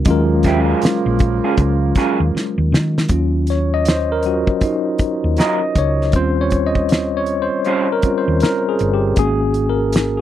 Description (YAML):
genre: R&B, neo-soul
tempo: 79 BPM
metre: 4/4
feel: swing 62% on 16ths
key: Eb dorian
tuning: A4 = 441 Hz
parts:
  - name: tine electric piano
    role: accompaniment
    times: 0.0-10.2 s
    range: Gb3 to Eb5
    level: -18 LUFS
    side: left 1 dB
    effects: medium stereo tremolo
  - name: warm soul drum kit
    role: drums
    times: 0.0-10.2 s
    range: hi-hat, kick drum, snare drum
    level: -17 LUFS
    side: equal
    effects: none
  - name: mellow horn section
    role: stabs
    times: 0.1-2.7 s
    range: Db3 to F4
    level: -24 LUFS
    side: right 8 dB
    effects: none
  - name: hollow-body short-scale fingered electric bass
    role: bass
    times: 0.1-10.2 s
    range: G1 to Eb3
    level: -19 LUFS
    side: equal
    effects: none
  - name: electric guitar through a small old amp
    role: second line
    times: 0.4-7.9 s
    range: Gb3 to C5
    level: -19 LUFS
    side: right 4 dB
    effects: none
room: little or no reverb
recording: dry, close 1970s-style studio recording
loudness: -15 LUFS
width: side -12 dB against mid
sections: 0.0-3.1 A section; 3.1-10.2 B section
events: drum fill 2.3-3.1; tine electric piano solo 3.1-10.2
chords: 0.1 Ebm11; 3.1 Ebm9; 6.1 Eb13; 9.2 Ab9sus4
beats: | 0.06 0.82 1.58 2.34 | 3.10 3.85 4.61 5.37 | 6.13 6.89 7.65 8.41 | 9.17 9.93